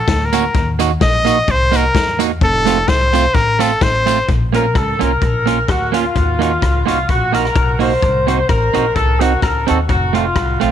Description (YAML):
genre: ska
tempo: 128 BPM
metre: 4/4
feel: swing 54% on 8ths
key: Bb harmonic minor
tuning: A4 = 439 Hz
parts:
  - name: brilliant trumpet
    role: melody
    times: 0.0-4.3 s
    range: A4 to Eb5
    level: -16 LUFS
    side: left 1 dB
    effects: none
  - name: upright bass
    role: bass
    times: 0.1-10.7 s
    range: F1 to E2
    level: -19 LUFS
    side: left 1 dB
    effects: none
  - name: vintage drum kit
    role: drums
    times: 0.1-10.7 s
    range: hi-hat, kick drum, rim click, snare drum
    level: -19 LUFS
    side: left 3 dB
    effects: tape echo
  - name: electric guitar at the edge of break-up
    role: accompaniment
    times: 0.3-10.7 s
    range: A3 to Gb4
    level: -19 LUFS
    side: right 12 dB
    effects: tape echo
  - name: tambourine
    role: percussion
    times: 0.3-4.2 s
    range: none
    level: -31 LUFS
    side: left 14 dB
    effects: tape echo
  - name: mellow horn section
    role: melody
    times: 4.6-10.7 s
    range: F4 to C5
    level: -17 LUFS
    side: left 1 dB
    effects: tape echo
room: light reverb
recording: 1960s-style stereo with parts hard left and right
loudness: -12 LUFS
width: side -9 dB against mid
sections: 0.0-4.3 A section; 4.3-10.7 B section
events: trumpet solo 0.0-4.3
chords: 0.0 Gb; 0.5 Ebm; 2.4 F; 4.3 Bbm; 6.2 Ebm; 8.0 Cdim; 9.9 F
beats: 0.08 | 0.55 1.01 1.48 1.95 | 2.42 2.88 3.35 3.82 | 4.29 4.75 5.22 5.69 | 6.16 6.62 7.09 7.56 | 8.03 8.49 8.96 9.43 | 9.89 10.36